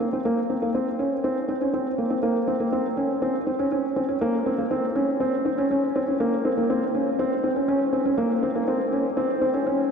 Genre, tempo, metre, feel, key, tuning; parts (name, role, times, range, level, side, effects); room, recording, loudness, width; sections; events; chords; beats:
electronica; 121 BPM; 4/4; straight; A4 = 439 Hz
felt-muted upright piano; solo; 0.0-9.8 s; Bb3 to Db4; -22 LUFS; equal; diffuse ambient delay
wet lush hall reverb, RT60 3.4 s; dreamy mix soaked in reverb; -22 LUFS; side -6 dB against mid
0.0-9.9 A section
build-up 0.0-9.9
| 0.24 0.74 1.24 1.73 | 2.23 2.72 3.22 3.71 | 4.21 4.71 5.20 5.70 | 6.19 6.69 7.18 7.68 | 8.18 8.67 9.17 9.66